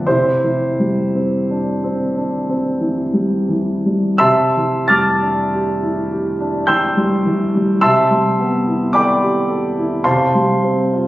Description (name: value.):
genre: classical, impressionist solo piano.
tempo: 41-55 BPM.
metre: 3/4.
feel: rubato.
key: C major.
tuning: A4 = 441 Hz.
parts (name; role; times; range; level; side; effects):
warm concert grand piano; solo; 0.0-11.1 s; C3 to A6; -14 LUFS; equal; none.
room: wet recital hall reverb, RT60 1.4 s.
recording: recorded on a phone in the room, studio reverb, compression.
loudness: -14 LUFS.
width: side -16 dB against mid.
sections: 0.0-4.2 A section; 4.2-11.1 A section.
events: none.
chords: 0.0 Cadd9; 4.2 C69; 7.8 Am9/C; 10.1 Fadd9/C.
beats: | 0.05 1.48 2.82 | 4.21 5.54 6.69 | 7.84 8.95 10.05.